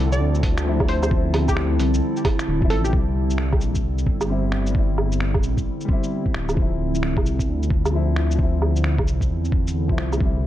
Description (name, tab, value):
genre	future garage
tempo	132 BPM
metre	4/4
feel	swing 63% on 16ths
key	D minor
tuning	A4 = 440 Hz
part	dark upright piano	accompaniment	0.0-10.5 s	F3 to E4	-29 LUFS	left 4 dB	sidechain pumping, tape echo
part	warbly tape-like pad	sustained chords	0.0-10.5 s	D3 to E4	-27 LUFS	right 1 dB	chorus, built-in reverb, phaser, sidechain pumping
part	dark detuned saw bass	bass	0.0-10.5 s	D1 to E2	-22 LUFS	equal	sidechain pumping
part	drifting glass-harmonics texture	texture	0.0-2.9, 10.4-10.5 s	A4 to D5	-39 LUFS	right 6 dB	chorus, built-in reverb
part	glassy wavetable pluck	melody	0.1-2.9 s	G4 to D5	-30 LUFS	right 1 dB	chorus, analog delay
part	lo-fi sampler-style drum kit	drums	0.1-10.2 s	finger snaps, hi-hat, shaker, woodblock	-29 LUFS	right 2 dB	none
part	electronic kick drum	drums	0.4-10.3 s	none	-22 LUFS	equal	none
room	little or no reverb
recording	dark, warm production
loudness	-19 LUFS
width	side -13 dB against mid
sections	0.0-2.9 A section; 2.9-10.5 B section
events	none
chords	0.0 Dm7; 2.9 C; 6.6 Dm7